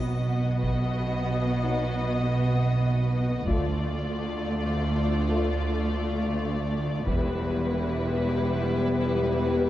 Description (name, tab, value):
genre	cinematic, epic orchestral film score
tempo	free time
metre	none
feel	none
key	E phrygian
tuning	A4 = 440 Hz
part	clear symphonic violin section	melody	0.0-9.7 s	B4 to D#5	-34 LUFS	left 3 dB	none
part	rich symphonic violin section	second line	0.0-9.7 s	E4 to F#4	-36 LUFS	left 2 dB	none
part	clear symphonic viola section	accompaniment	0.0-9.7 s	G3 to B3	-35 LUFS	left 1 dB	none
part	clear symphonic double bass section	bass	0.0-9.7 s	E1 to D2	-29 LUFS	right 2 dB	none
part	rich symphonic cello section	bass	0.0-9.7 s	D2 to B2	-29 LUFS	right 1 dB	none
part	taiko ensemble	drums	0.6-8.1 s	none	-31 LUFS	equal	none
part	mellow French horn section	sustained chords	1.6-9.7 s	F#3 to G4	-31 LUFS	left 3 dB	none
room	moderate scoring stage reverb, RT60 1.9 s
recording	worn, warbling old tape, cassette tape, warbly pitch drift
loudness	-24 LUFS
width	side -13 dB against mid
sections	0.0-9.7 A section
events	build-up 0.0-9.7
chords	0.0 B; 3.5 Dm; 7.1 Em